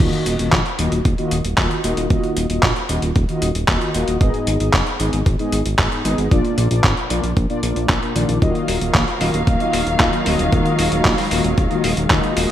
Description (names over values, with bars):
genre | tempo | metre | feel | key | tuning
italo disco | 114 BPM | 4/4 | straight | Eb harmonic minor | A4 = 441 Hz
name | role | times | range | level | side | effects
mellow synth brass | stabs | 0.0-12.5 s | Ab2 to Eb5 | -21 LUFS | left 1 dB | chorus, digital delay
fat analog bass | bass | 0.0-12.5 s | Eb1 to Bb1 | -22 LUFS | equal | tube saturation
dusty soul sampler-style drum kit | drums | 0.0-12.5 s | crash cymbal, handclaps, hi-hat | -22 LUFS | equal | overdrive, gated reverb
electronic kick drum | drums | 0.0-12.2 s | none | -19 LUFS | equal | overdrive
muted studio string section | sustained chords | 8.4-12.5 s | Eb3 to F5 | -22 LUFS | equal | vintage 12-bit sampler grit
room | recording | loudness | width
moderate plate reverb, RT60 2.2 s | bright 1980s-style digital production, vinyl crackle | -16 LUFS | side -11 dB against mid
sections
0.0-12.5 A section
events
none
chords
0.0 Ebmadd9; 4.2 Abm; 6.3 Bb; 8.4 Ebmadd9